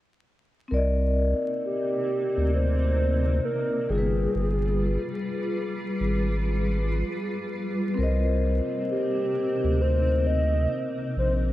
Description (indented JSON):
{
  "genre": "hip hop",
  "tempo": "66 BPM",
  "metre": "4/4",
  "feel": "swing 64% on 16ths",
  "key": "C minor",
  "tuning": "A4 = 440 Hz",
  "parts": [
    { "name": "vibraphone with soft mallets", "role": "accompaniment", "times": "0.7-11.5 s", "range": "G3 to Eb5", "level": "-29 LUFS", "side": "left 3 dB", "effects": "low-pass filter" },
    { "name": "granular cloud pad", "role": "sustained chords", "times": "1.3-11.5 s", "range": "C3 to B4", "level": "-32 LUFS", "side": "right 1 dB", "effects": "built-in reverb, low-pass filter" },
    { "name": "saturated sub bass", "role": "bass", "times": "0.7-11.5 s", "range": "G1 to D2", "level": "-24 LUFS", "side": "equal", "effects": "none" },
    { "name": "hollow clarinet-like synth lead", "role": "melody", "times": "1.7-11.3 s", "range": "G4 to Eb5", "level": "-28 LUFS", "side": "right 1 dB", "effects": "chorus, low-pass filter" }
  ],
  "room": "light reverb",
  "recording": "dark, warm production, vinyl crackle",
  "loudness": "-23 LUFS",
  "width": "side -15 dB against mid",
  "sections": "0.7-11.5 A section",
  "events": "none",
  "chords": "0.0 N.C.; 0.7 Cm9; 3.9 G7b9; 8.0 Cm9"
}